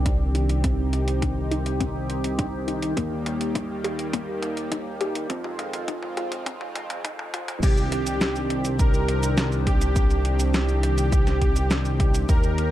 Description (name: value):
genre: synthwave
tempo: 103 BPM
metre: 4/4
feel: straight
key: C minor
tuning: A4 = 442 Hz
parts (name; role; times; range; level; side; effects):
- warm analog pad; sustained chords; 0.0-12.7 s; Eb3 to Bb4; -29 LUFS; equal; chorus, sidechain pumping
- chorused synth bass; bass; 0.0-12.7 s; C2 to F2; -26 LUFS; equal; sidechain pumping
- soft round pluck; arpeggios; 0.1-7.5 s; Bb3 to G4; -33 LUFS; left 2 dB; chorus, digital delay
- clean 12-bit digital drum machine; drums; 0.1-12.7 s; cabasa, crash cymbal, hi-hat, snare drum, toms; -30 LUFS; equal; high-pass filter on hats, high-pass filter on snare, high-pass filter on toms, high-pass filter on cymbals, high-pass filter on perc, high-pass filter on room
- electronic kick drum; drums; 0.1-12.4 s; none; -22 LUFS; equal; none
- soft supersaw; melody; 7.6-12.7 s; G4 to Bb4; -29 LUFS; right 1 dB; tape echo
room: digital ambience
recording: dark, warm production, high-pass filter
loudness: -22 LUFS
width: side -13 dB against mid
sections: 0.0-7.6 A section; 7.6-12.7 B section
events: drum fill 0.0-7.6; filter sweep on synth arpeggio sound 0.0-7.6; filter sweep 0.0-7.6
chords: 0.0 Cmadd9; 3.0 Eb; 5.3 Fm7; 7.6 Cmadd9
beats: 0.06 | 0.64 1.22 1.80 2.39 | 2.97 3.55 4.13 4.72 | 5.30 5.88 6.46 7.05 | 7.63 8.21 8.79 9.38 | 9.96 10.54 11.12 11.71 | 12.29